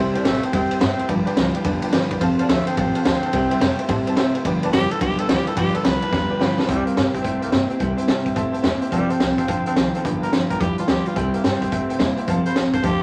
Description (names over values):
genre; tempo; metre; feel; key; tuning
rockabilly; 214 BPM; 4/4; swing 64% on 8ths; C major; A4 = 440 Hz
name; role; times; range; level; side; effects
picked steel-string acoustic guitar; accompaniment; 0.0-13.0 s; G2 to A4; -29 LUFS; equal; none
tack piano; accompaniment; 0.0-13.0 s; B4 to B5; -31 LUFS; equal; none
electric guitar through a small old amp; riff; 0.0-13.0 s; F2 to Bb3; -26 LUFS; equal; none
upright bass; bass; 0.0-13.0 s; F1 to C3; -32 LUFS; equal; none
raspy tenor saxophone; melody; 0.2-13.0 s; G3 to C5; -28 LUFS; equal; none
raw garage drum kit; drums; 0.2-12.9 s; hi-hat, kick drum, ride cymbal, snare drum; -25 LUFS; equal; none
room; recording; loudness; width
light reverb; vinyl crackle; -20 LUFS; mono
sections
0.0-6.7 A section; 6.7-13.0 B section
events
drum fill 6.1-6.7; honky-tonk piano fill 8.4-8.9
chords
0.0 C; 1.1 G7; 2.2 F; 3.3 C; 4.5 G7; 6.7 C; 8.9 F; 10.0 G7; 11.2 C; 12.3 F